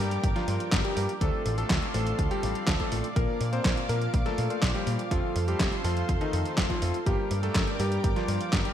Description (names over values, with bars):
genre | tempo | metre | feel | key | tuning
italo disco | 123 BPM | 4/4 | straight | G minor | A4 = 440 Hz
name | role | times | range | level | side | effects
bright electric grand piano | melody | 0.0-8.7 s | Eb3 to C5 | -32 LUFS | left 1 dB | analog chorus, ping-pong delay
lush unison pad | sustained chords | 0.0-8.7 s | F4 to D6 | -36 LUFS | right 1 dB | chorus
barky tine electric piano | stabs | 0.0-8.7 s | G2 to C5 | -36 LUFS | left 1 dB | medium stereo tremolo
overdriven picked electric bass | bass | 0.0-8.6 s | F1 to Bb2 | -30 LUFS | equal | tube saturation
detuned 8-bit digital drum machine | drums | 0.1-8.7 s | handclaps, hi-hat, snare drum | -32 LUFS | right 1 dB | overdrive, small room ambience, gated reverb
electronic kick drum | drums | 0.2-8.6 s | none | -29 LUFS | equal | overdrive, small room ambience
room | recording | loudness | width
light reverb | bright 1980s-style digital production | -25 LUFS | side -10 dB against mid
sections
0.0-8.7 A section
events
none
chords
0.0 Gm; 1.2 Dm7; 3.2 Bb; 5.1 F; 7.1 Gm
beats
0.23 0.72 | 1.21 1.70 2.19 2.67 | 3.16 3.65 4.14 4.62 | 5.11 5.60 6.09 6.58 | 7.06 7.55 8.04 8.53